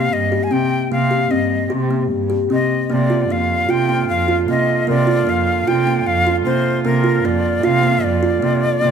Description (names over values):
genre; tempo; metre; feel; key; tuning
contemporary instrumental, chamber music in an uneven meter; 152 BPM; 5/4; straight; unclear; A4 = 440 Hz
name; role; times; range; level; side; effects
breathy bright jazz flute; melody; 0.0-8.9 s; Bb4 to Ab5; -20 LUFS; left 3 dB; none
kalimba; arpeggios; 0.0-8.9 s; Bb3 to G4; -19 LUFS; right 1 dB; none
dark cello; bass; 0.0-8.9 s; F2 to C3; -20 LUFS; right 4 dB; none
celesta; texture; 1.7-5.9 s; G4 to Bb4; -28 LUFS; left 5 dB; none
mellow woodwind section; sustained chords; 2.9-8.9 s; D3 to F4; -26 LUFS; equal; none
room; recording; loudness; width
moderate recital hall reverb, RT60 1.6 s; close, detailed microphones; -15 LUFS; side -7 dB against mid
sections
0.0-8.9 A section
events
none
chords
0.0 Cm7; 2.9 Bb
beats
0.14 0.53 | 0.93 1.32 1.72 2.12 2.51 | 2.91 3.30 3.70 4.09 4.49 | 4.88 5.28 5.67 6.07 6.46 | 6.86 7.25 7.65 8.04 8.44 | 8.83